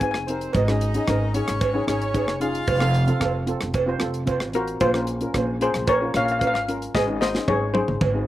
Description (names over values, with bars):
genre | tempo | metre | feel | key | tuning
calypso | 112 BPM | 4/4 | straight | unclear | A4 = 440 Hz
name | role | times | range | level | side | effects
steel pan | melody | 0.0-0.2, 4.6-8.3 s | F4 to Ab5 | -24 LUFS | left 3 dB | none
steel pan | accompaniment | 0.0-8.2 s | C4 to C5 | -28 LUFS | left 1 dB | slapback echo
upright bass | bass | 0.0-8.2 s | F1 to Bb1 | -26 LUFS | equal | none
tight funk drum kit | drums | 0.0-8.1 s | hi-hat, kick drum, rim click, snare drum, toms | -27 LUFS | equal | none
cowbell | percussion | 0.0-8.1 s | none | -27 LUFS | right 5 dB | none
clear horn section | second line | 0.3-3.4 s | C4 to F5 | -28 LUFS | right 2 dB | slapback echo
room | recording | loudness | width
little or no reverb | recorded outdoors, with no room sound | -20 LUFS | side -14 dB against mid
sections
0.0-8.3 A section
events
drum fill 7.0-8.3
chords
0.0 Ab; 0.5 Absus4; 2.7 F; 4.8 Bbm; 7.0 Absus4